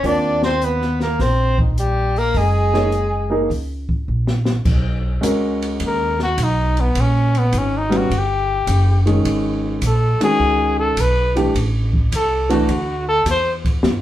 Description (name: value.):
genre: jazz, small-group swing and bop.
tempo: 104 BPM.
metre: 4/4.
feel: swing 68% on 8ths.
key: B major from 4.7 s.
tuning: A4 = 440 Hz.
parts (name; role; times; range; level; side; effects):
warm trumpet; melody; 0.0-13.5 s; B3 to D5; -20 LUFS; left 1 dB; none.
growling tenor saxophone; second line; 0.0-3.5 s; Eb3 to D4; -23 LUFS; right 2 dB; none.
warm grand piano; accompaniment; 0.0-12.7 s; D#3 to D5; -20 LUFS; equal; none.
upright bass; bass; 0.0-14.0 s; Gb1 to G2; -20 LUFS; equal; none.
open jazz drum kit; drums; 0.0-14.0 s; crash cymbal, hi-hat, kick drum, ride cymbal, snare drum; -24 LUFS; equal; none.
room: wet studio ambience, RT60 0.5 s.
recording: heard from further back in the room.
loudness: -16 LUFS.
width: side -13 dB against mid.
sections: 0.0-4.7 A section; 4.7-14.0 B section.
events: drum fill 4.1-4.7; trumpet solo 4.7-14.0.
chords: 0.0 Eb5; 2.3 Gb69; 4.7 Bmaj9; 6.9 G#m11; 8.1 D#7#9; 9.2 G#m11; 11.5 Am; 12.7 Dsus2.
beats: | 0.04 0.62 1.19 1.77 | 2.35 2.92 3.50 4.08 | 4.65 5.22 5.80 6.38 | 6.95 7.52 8.10 8.67 | 9.25 9.82 10.39 10.97 | 11.54 12.11 12.69 13.26 | 13.83.